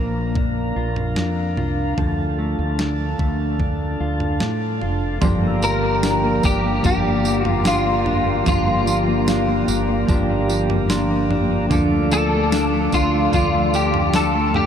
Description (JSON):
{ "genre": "dream pop", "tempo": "74 BPM", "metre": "4/4", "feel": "straight", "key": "G dorian from 5.2 s", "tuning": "A4 = 439 Hz", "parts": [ { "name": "mellow tonewheel organ", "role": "sustained chords", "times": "0.0-14.7 s", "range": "D4 to D6", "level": "-26 LUFS", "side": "right 1 dB", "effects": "slow rotary speaker" }, { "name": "mellow electric guitar", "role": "arpeggios", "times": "0.0-14.7 s", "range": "F3 to F4", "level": "-23 LUFS", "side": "left 3 dB", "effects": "lush chorus, ping-pong delay" }, { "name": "mellow fretless electric bass", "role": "bass", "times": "0.0-14.7 s", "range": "F1 to A2", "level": "-24 LUFS", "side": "equal", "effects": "none" }, { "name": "crisp 8-bit digital drum machine", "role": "drums", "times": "0.4-14.7 s", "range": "kick drum, snare drum, tambourine, toms", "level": "-24 LUFS", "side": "right 1 dB", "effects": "none" }, { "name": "mellow electric guitar", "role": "accompaniment", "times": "5.2-14.7 s", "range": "G2 to A4", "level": "-26 LUFS", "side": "right 5 dB", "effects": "tremolo, lush chorus" }, { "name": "celesta", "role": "texture", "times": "5.2-14.7 s", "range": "C6 to F6", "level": "-36 LUFS", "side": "left 2 dB", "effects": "none" }, { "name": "clean electric guitar", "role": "melody", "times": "5.6-14.7 s", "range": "F4 to Bb4", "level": "-22 LUFS", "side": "left 1 dB", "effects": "ensemble chorus, ping-pong delay" } ], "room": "wet huge ambient reverb, RT60 8.4 s", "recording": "dreamy mix soaked in reverb", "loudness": "-17 LUFS", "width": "side -8 dB against mid", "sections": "0.0-5.2 A section; 5.2-14.7 B section", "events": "none", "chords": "0.0 Bb; 2.0 Dm; 5.2 Gm7; 11.7 Dm" }